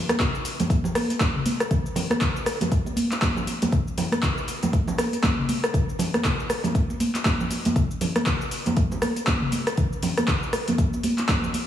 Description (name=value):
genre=house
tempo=119 BPM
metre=4/4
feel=swing 59% on 16ths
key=none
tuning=none
part: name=afro-pop drum kit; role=drums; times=0.1-11.7 s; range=handclaps, hi-hat, rim click, shaker, toms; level=-26 LUFS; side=left 1 dB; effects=none
part: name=congas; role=percussion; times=0.1-11.7 s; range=none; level=-26 LUFS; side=right 1 dB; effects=none
part: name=electronic kick drum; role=drums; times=0.2-11.4 s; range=none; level=-25 LUFS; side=equal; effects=none
room=moderate lush hall reverb, RT60 1.8 s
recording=heavily compressed radio sound, small room ambience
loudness=-21 LUFS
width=side -10 dB against mid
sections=0.0-11.7 A section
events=none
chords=none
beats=0.20 0.70 1.20 | 1.71 2.21 2.72 3.22 | 3.73 4.23 4.73 5.24 | 5.74 6.25 6.75 7.25 | 7.76 8.26 8.77 9.27 | 9.78 10.28 10.78 11.29